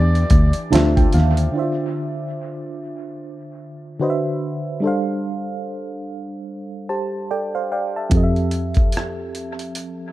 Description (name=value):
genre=R&B, neo-soul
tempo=73 BPM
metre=4/4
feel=swing 59% on 16ths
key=D dorian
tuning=A4 = 443 Hz
part: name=trumpet with metal mute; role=melody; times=0.0-0.7 s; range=D5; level=-31 LUFS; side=equal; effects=dub echo
part: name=FM electric piano with auto-pan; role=accompaniment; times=0.0-10.1 s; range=D3 to A5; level=-23 LUFS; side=right 1 dB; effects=none
part: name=warm saxophone section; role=stabs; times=0.0-1.1 s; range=C3 to G4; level=-33 LUFS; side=left 5 dB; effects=dub echo
part: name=vintage muted fingered electric bass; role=bass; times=0.0-1.5, 8.1-10.1 s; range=D2 to F2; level=-17 LUFS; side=equal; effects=none
part: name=dusty soul sampler-style drum kit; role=drums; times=0.2-1.5, 8.1-10.0 s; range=hi-hat, kick drum, rim click, snare drum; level=-18 LUFS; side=equal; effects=none
room=little or no reverb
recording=echo-heavy mix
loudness=-18 LUFS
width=side -15 dB against mid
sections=0.0-1.5 A section; 1.5-10.1 B section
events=FM electric piano fill 0.3-1.5, 6.5-8.1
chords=0.0 Em7; 0.7 Dm9; 4.0 D13; 4.8 G9sus4; 8.1 Fmaj9